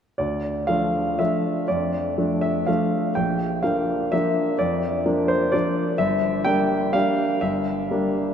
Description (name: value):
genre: classical, piano waltz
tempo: 114-134 BPM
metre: 3/4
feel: rubato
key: D minor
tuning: A4 = 436 Hz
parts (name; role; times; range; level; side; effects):
- warm baby grand piano; solo; 0.2-8.3 s; G1 to G5; -20 LUFS; equal; none
room: wet cathedral reverb, RT60 5.0 s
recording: in a vast, echoing space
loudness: -20 LUFS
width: side -8 dB against mid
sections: 0.2-8.3 A section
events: none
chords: 0.2 Dm; 1.7 Dm/F; 3.2 Bb; 6.0 Em7b5/G